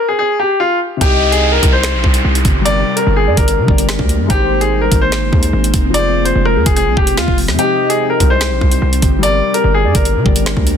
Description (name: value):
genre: hip hop, drill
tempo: 146 BPM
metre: 4/4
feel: half-time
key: C minor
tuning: A4 = 440 Hz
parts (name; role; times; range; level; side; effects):
- bright upright piano; melody; 0.0-10.8 s; F4 to D5; -16 LUFS; left 2 dB; tape echo
- warm velvety synth lead; second line; 1.0-10.0 s; Ab4 to Eb5; -24 LUFS; right 2 dB; chorus, tape echo
- dark concert grand piano; accompaniment; 1.0-10.8 s; C3 to D5; -22 LUFS; left 8 dB; none
- ethereal airy pad; sustained chords; 1.9-10.8 s; Ab3 to C4; -22 LUFS; right 1 dB; ensemble chorus, built-in reverb
- hard-hitting 808-style bass; bass; 1.0-10.8 s; F1 to D3; -16 LUFS; right 1 dB; none
- drill drum kit; drums; 1.0-10.8 s; finger snaps, hi-hat, kick drum, rim click, snare drum; -15 LUFS; equal; soft clipping on snare
- downlifter; sound effects; 1.0-4.3 s; none; -20 LUFS; right 1 dB; none
room: little or no reverb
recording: dense, heavily limited modern master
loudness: -11 LUFS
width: side -8 dB against mid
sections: 0.0-1.0 A section; 1.0-10.8 B section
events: stop 0.0-1.0; kick muted 7.6-8.0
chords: 0.0 N.C.; 1.0 Cm; 2.7 Gm; 4.3 Abadd9; 5.9 Fm; 7.6 Cm; 9.2 Gm